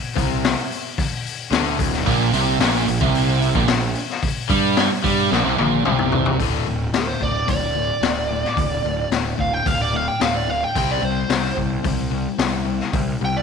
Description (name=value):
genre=classic rock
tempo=110 BPM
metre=4/4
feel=straight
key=unclear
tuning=A4 = 441 Hz
part: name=crunchy overdriven guitar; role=riff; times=0.2-13.4 s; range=D2 to C4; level=-25 LUFS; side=left 9 dB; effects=none
part: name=fuzz picked electric bass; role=bass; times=0.2-13.4 s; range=D1 to G2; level=-25 LUFS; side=right 3 dB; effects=overdrive
part: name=raw garage drum kit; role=drums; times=0.2-13.1 s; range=hi-hat, kick drum, snare drum, toms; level=-22 LUFS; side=left 4 dB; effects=none
part: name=overdriven electric guitar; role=riff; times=2.1-6.4 s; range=Bb2 to G3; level=-21 LUFS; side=right 12 dB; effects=none
part: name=fuzz lead guitar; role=melody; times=7.0-13.4 s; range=A4 to G5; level=-23 LUFS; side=right 2 dB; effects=distortion
room=moderate echo chamber reverb, RT60 1.7 s, small room ambience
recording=1960s-style stereo with parts hard left and right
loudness=-18 LUFS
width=side -6 dB against mid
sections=0.0-6.4 A section; 6.4-13.4 B section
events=drum fill 5.3-6.4; lead electric guitar solo 6.4-13.4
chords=0.0 N.C.; 2.1 Gmadd11/Bb; 6.4 D5; 10.8 C5